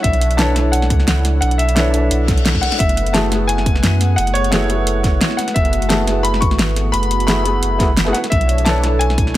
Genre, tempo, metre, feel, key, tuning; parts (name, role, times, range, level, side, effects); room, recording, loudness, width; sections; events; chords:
liquid drum and bass; 174 BPM; 4/4; swing 53% on 16ths; F# minor; A4 = 439 Hz
dark baby grand piano; melody; 0.0-9.4 s; C#5 to C#6; -21 LUFS; left 2 dB; digital delay
felt-muted upright piano; accompaniment; 0.0-9.4 s; A3 to C#5; -22 LUFS; right 1 dB; digital delay
warm analog pad; sustained chords; 0.0-9.4 s; A3 to F#5; -26 LUFS; equal; chorus, sidechain pumping
warm sub bass; bass; 0.0-9.3 s; F#1 to F#2; -18 LUFS; equal
electronic kick drum; drums; 0.0-9.3 s; -17 LUFS; equal
pop drum kit; drums; 0.0-9.4 s; hi-hat, snare drum; -20 LUFS; equal
reverse cymbal; sound effects; 2.3-2.8 s; -24 LUFS; left 6 dB
light reverb; -13 LUFS; side -14 dB against mid
0.0-9.4 A section
reverse cymbal 2.3-2.8
0.0 Bm11; 2.8 F#m11; 8.3 Bm11